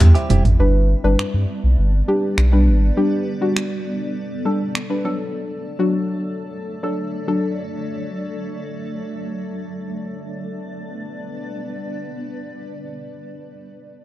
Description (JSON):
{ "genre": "dance-pop", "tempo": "101 BPM", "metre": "4/4", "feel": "straight", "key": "G major", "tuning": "A4 = 442 Hz", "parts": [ { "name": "soft round pluck", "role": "accompaniment", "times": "0.0-7.6 s", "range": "F#3 to B4", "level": "-22 LUFS", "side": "left 1 dB", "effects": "chorus" }, { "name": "granular cloud pad", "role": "sustained chords", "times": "0.0-13.2 s", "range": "F#3 to E5", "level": "-28 LUFS", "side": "equal", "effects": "built-in reverb" }, { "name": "direct-recorded clean electric guitar", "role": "riff", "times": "0.0-0.5 s", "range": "G3 to G4", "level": "-26 LUFS", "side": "right 3 dB", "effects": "analog chorus" }, { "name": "saturated sub bass", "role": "bass", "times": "0.0-2.9 s", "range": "E1 to G2", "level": "-14 LUFS", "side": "equal", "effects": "none" }, { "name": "punchy analog drum machine", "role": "drums", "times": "0.0-4.9 s", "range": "finger snaps, hi-hat, toms", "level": "-22 LUFS", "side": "right 3 dB", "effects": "none" } ], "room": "light reverb", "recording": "dark, warm production", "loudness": "-19 LUFS", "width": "side -16 dB against mid", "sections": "0.6-10.1 A section; 10.1-12.5 B section", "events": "drum fill 0.0-0.6", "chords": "0.0 C/E; 0.6 G; 5.0 D/F#; 10.1 G" }